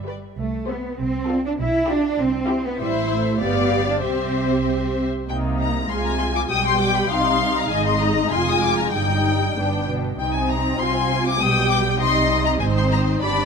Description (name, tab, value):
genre	quick classical-period movement for string orchestra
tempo	98 BPM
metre	2/4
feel	straight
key	C major, C minor from 5.3 s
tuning	A4 = 441 Hz
part	dark chamber double bass section	bass	0.0-13.4 s	F1 to C2	-26 LUFS	right 4 dB	none
part	warm symphonic cello section	bass	0.0-13.4 s	F2 to E4	-24 LUFS	right 2 dB	none
part	warm symphonic violin section	melody	0.1-13.4 s	D5 to Eb6	-25 LUFS	left 6 dB	none
part	warm symphonic violin section	second line	0.1-13.4 s	G4 to Ab5	-25 LUFS	left 4 dB	none
part	dark symphonic viola section	accompaniment	0.1-13.4 s	G3 to G4	-25 LUFS	equal	none
room	moderate concert hall reverb, RT60 2.2 s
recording	none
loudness	-18 LUFS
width	side -5 dB against mid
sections	0.0-5.3 A section; 5.3-13.4 B section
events	none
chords	0.4 C; 1.0 Dm7/C; 1.6 G7/B; 2.2 C; 2.8 Am; 3.4 G7; 4.0 C; 5.3 Cm; 5.9 Bb7sus2/C (rootless); 6.5 G/B; 7.1 Cm; 7.7 Ab5; 8.3 Fmadd11; 8.9 Eb/G; 9.6 G; 10.2 Cm; 10.8 Fm6/C; 11.4 G/B; 12.0 Cm; 12.6 Ab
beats	| 0.39 0.99 | 1.59 2.19 | 2.79 3.40 | 4.03 4.66 | 5.29 5.90 | 6.51 7.11 | 7.71 8.32 | 8.94 9.56 | 10.18 10.80 | 11.41 12.01 | 12.61 13.22